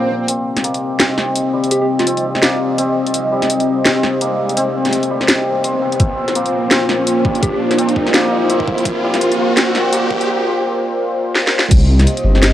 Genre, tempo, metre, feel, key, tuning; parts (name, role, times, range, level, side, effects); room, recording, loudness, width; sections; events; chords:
half-time drum and bass; 168 BPM; 4/4; swing 58% on 16ths, half-time; C minor; A4 = 445 Hz
dark analog pad; sustained chords; 0.0-12.5 s; Bb3 to Eb5; -18 LUFS; left 1 dB; chorus, sidechain pumping
santur; arpeggios; 0.0-12.5 s; G3 to C5; -22 LUFS; right 1 dB; low-pass filter, tape echo
swell and riser; sound effects; 0.0-10.3 s; -23 LUFS; equal
drum and bass drum kit; drums; 0.3-12.5 s; crash cymbal, hi-hat, shaker, snare drum; -16 LUFS; equal; low-pass filter on hats, low-pass filter on snare, low-pass filter on cymbals, low-pass filter on perc, low-pass filter on room
soft struck synth lead; melody; 1.7-2.2, 7.4-7.6 s; F4 to G4; -24 LUFS; right 1 dB; chorus, tape echo
electronic kick drum; drums; 6.0-11.8 s; -15 LUFS; equal
dark detuned saw bass; bass; 11.7-12.5 s; G1 to C2; -11 LUFS; equal; transformer saturation
light reverb; dry, gritty hardware recording, cassette tape, high-pass filter; -13 LUFS; side -12 dB against mid
0.3-11.7 A section
swell 0.0; build-up 0.3-11.7; riser 0.3-10.3; filter sweep on santur 0.3-11.7; drum fill 11.4-11.7
0.3 Cm; 6.0 Bb5; 11.7 Cm